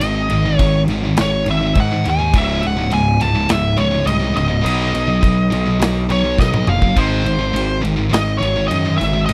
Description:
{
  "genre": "heavy metal",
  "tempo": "104 BPM",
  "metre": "4/4",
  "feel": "straight",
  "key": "unclear",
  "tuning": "A4 = 442 Hz",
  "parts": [
    { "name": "nasal lead guitar with a parked wah", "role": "melody", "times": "0.0-9.3 s", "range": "B#4 to A5", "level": "-23 LUFS", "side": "equal", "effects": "overdrive, tape echo" },
    { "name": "heavy high-gain guitar", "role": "riff", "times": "0.0-9.3 s", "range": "C#2 to B3", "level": "-24 LUFS", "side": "equal", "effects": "distortion" },
    { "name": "scooped high-gain guitar", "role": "riff", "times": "0.0-9.3 s", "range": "C#2 to B3", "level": "-25 LUFS", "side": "equal", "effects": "distortion" },
    { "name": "fuzz picked electric bass", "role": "bass", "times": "0.0-9.3 s", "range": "C#1 to G#2", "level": "-22 LUFS", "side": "equal", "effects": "overdrive" },
    { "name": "big rock drum kit", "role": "drums", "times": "0.0-9.3 s", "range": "crash cymbal, kick drum, snare drum, toms", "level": "-24 LUFS", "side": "equal", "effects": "none" }
  ],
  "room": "little or no reverb",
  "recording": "dry, close 1970s-style studio recording",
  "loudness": "-17 LUFS",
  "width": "mono",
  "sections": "0.0-9.3 A section",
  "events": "half time 0.0-9.3; drum fill 6.4-7.0",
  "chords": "0.0 G#5; 2.3 C#5; 4.7 B; 7.0 G#"
}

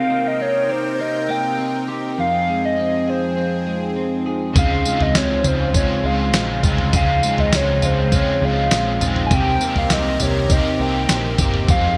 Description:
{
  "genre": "dream pop",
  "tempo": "101 BPM",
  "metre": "4/4",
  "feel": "straight",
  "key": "unclear",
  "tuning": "A4 = 440 Hz",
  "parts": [
    { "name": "warbly nostalgic lead", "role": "melody", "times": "0.0-12.0 s", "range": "C5 to Ab5", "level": "-24 LUFS", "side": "equal", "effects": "chorus, digital delay" },
    { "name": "phased analog pad", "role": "sustained chords", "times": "0.0-12.0 s", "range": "C3 to G5", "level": "-28 LUFS", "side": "equal", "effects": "phaser, chorus" },
    { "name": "electric guitar at the edge of break-up", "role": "arpeggios", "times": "0.0-12.0 s", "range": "F2 to Ab4", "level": "-26 LUFS", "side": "equal", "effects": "lush chorus, digital delay" },
    { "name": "cranked stack guitar", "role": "accompaniment", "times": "4.5-12.0 s", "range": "F2 to G4", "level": "-28 LUFS", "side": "equal", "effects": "overdrive, harmonic tremolo, analog chorus" },
    { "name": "vintage muted picked electric bass", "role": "bass", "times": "4.6-11.9 s", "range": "F1 to Db2", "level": "-25 LUFS", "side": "equal", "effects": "none" },
    { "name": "lo-fi sampler-style drum kit", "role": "drums", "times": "4.6-11.8 s", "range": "kick drum, snare drum, tambourine, toms", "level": "-22 LUFS", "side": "equal", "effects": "gated reverb" }
  ],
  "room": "moderate plate reverb, RT60 2.8 s",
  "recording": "bright 1980s-style digital production",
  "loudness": "-19 LUFS",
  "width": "mono",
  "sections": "0.0-12.0 A section",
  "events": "none",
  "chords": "0.0 Cm7; 2.2 Fm7; 4.6 Dbmaj7; 9.3 Cm7"
}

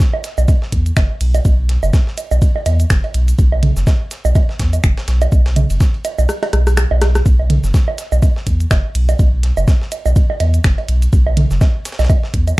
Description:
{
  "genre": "minimal techno",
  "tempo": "124 BPM",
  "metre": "4/4",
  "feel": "swing 57% on 16ths",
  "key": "unclear",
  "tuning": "A4 = 438 Hz",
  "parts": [
    { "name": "breakbeat sampler-style drum kit", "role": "drums", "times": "0.0-12.5 s", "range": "hi-hat, ride cymbal, snare drum", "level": "-34 LUFS", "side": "equal", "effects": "high-pass filter on snare, high-pass filter on cymbals, high-pass filter on hats" },
    { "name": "electronic kick drum", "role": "drums", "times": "0.0-12.4 s", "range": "none", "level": "-13 LUFS", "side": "equal", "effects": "none" },
    { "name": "minimal click drum kit", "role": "drums", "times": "0.0-12.6 s", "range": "cabasa, finger snaps, hi-hat, rim click", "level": "-23 LUFS", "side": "equal", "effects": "none" },
    { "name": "electronic woodblock, bongos and toms", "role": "percussion", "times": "0.1-12.6 s", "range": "none", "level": "-21 LUFS", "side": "right 4 dB", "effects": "none" },
    { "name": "saturated sub bass", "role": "bass", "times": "0.4-12.5 s", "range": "F#1 to E2", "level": "-14 LUFS", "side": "equal", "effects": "sidechain pumping" }
  ],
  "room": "little or no reverb",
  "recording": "dark, warm production",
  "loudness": "-12 LUFS",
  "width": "side -20 dB against mid",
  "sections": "0.0-12.6 A section",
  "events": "kick drops out 6.3-7.3; drum fill 6.3-7.3",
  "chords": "none"
}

